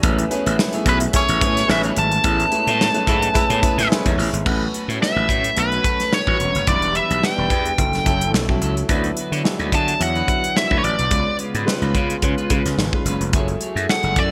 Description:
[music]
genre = polished 1980s jazz-funk pop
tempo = 108 BPM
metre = 4/4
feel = swing 54% on 16ths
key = A major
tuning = A4 = 441 Hz
[part]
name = clear grand piano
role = accompaniment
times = 0.0-14.3 s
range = F#3 to C#5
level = -28 LUFS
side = equal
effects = subtle chorus
[part]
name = warm analog pad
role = sustained chords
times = 0.0-14.3 s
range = C#3 to G#5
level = -35 LUFS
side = equal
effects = none
[part]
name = clean electric guitar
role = riff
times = 0.0-14.3 s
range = F#3 to E5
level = -32 LUFS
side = equal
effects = lush chorus
[part]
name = gritty slap bass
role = bass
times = 0.0-14.3 s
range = E1 to D3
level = -24 LUFS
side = equal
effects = overdrive
[part]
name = modern studio drum kit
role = drums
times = 0.0-14.3 s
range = crash cymbal, hi-hat, kick drum, snare drum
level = -24 LUFS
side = equal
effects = gated reverb
[part]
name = nasal lead guitar with a parked wah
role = melody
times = 0.9-14.3 s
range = B4 to A5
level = -22 LUFS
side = equal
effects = overdrive
[part]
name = warm horn section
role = second line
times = 0.9-4.3 s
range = E3 to B4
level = -32 LUFS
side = equal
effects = none
[sound]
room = light reverb, studio ambience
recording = bright 1980s-style digital production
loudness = -19 LUFS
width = mono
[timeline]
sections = 0.0-4.5 A section; 4.5-14.3 B section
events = none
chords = 0.0 Amaj9; 4.5 A69; 6.7 Em7; 7.8 F#m7; 8.9 D69; 11.1 C#7; 13.3 F#m9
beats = | 0.04 0.59 1.14 1.69 | 2.24 2.80 3.35 3.90 | 4.46 5.01 5.57 6.12 | 6.67 7.23 7.79 8.34 | 8.90 9.45 10.01 10.56 | 11.12 11.68 12.23 12.79 | 13.34 13.90

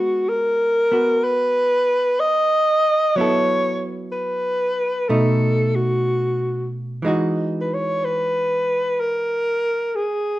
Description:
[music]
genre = jazz ballad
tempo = 62 BPM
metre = 4/4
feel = swing 67% on 8ths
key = unclear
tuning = A4 = 440 Hz
[part]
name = mellow alto saxophone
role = melody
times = 0.0-10.4 s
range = F#4 to D#5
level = -18 LUFS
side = equal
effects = none
[part]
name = hollow-body jazz guitar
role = accompaniment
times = 0.0-10.4 s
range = B2 to A4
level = -23 LUFS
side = right 1 dB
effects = none
[sound]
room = moderate large studio reverb, RT60 0.9 s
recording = dark, warm production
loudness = -18 LUFS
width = side -16 dB against mid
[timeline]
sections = 0.0-10.4 A section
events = none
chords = 0.0 G#m9; 3.1 F#m7; 5.1 B7; 7.0 Emaj9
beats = 0.28 1.23 2.19 | 3.15 4.11 5.07 6.04 | 7.01 7.98 8.94 9.90

